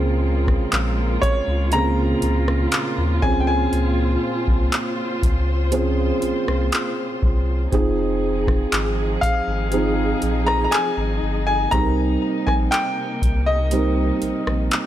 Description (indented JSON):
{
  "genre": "contemporary R&B",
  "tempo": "60 BPM",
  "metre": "4/4",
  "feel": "straight",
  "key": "F minor",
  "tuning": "A4 = 440 Hz",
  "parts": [
    { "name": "felt-muted upright piano", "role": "accompaniment", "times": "0.0-14.9 s", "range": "Db3 to Bb4", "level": "-24 LUFS", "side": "right 3 dB", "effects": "none" },
    { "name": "muted studio string section", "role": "sustained chords", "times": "0.0-14.9 s", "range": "Bb2 to C5", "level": "-27 LUFS", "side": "left 1 dB", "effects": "sidechain pumping" },
    { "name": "warm sub bass", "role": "bass", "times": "0.0-14.7 s", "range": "F1 to Eb2", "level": "-22 LUFS", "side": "equal", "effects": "none" },
    { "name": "booming analog drum machine", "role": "drums", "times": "0.5-14.9 s", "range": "handclaps, hi-hat, kick drum, rim click", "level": "-22 LUFS", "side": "equal", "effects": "none" },
    { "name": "clear baby grand piano", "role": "melody", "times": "1.2-14.9 s", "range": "Db5 to Bb5", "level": "-24 LUFS", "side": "left 2 dB", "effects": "ping-pong delay" }
  ],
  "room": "small room ambience",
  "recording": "none",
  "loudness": "-18 LUFS",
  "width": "side -12 dB against mid",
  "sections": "0.0-14.9 A section",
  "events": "none",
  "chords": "0.0 Bbm9; 3.2 Dbmaj7; 7.7 Fm7; 11.7 Cm7",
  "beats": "0.72 1.72 2.72 | 3.72 4.72 5.72 6.72 | 7.72 8.72 9.72 10.72 | 11.72 12.72 13.72 14.72"
}